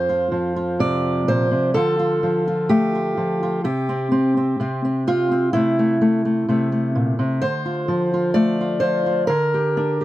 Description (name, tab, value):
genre	folk, solo fingerstyle acoustic guitar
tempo	64 BPM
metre	4/4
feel	straight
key	unclear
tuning	A4 = 444 Hz
part	fingerpicked steel-string acoustic guitar	solo	0.0-10.0 s	F2 to D5	-18 LUFS	equal	none
room	little or no reverb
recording	dry, close 1970s-style studio recording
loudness	-18 LUFS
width	side -15 dB against mid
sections	0.0-10.0 A section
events	none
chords	0.0 F5; 1.8 Dm; 3.7 N.C.; 5.5 Am/C; 7.4 Dm; 9.3 Gm/D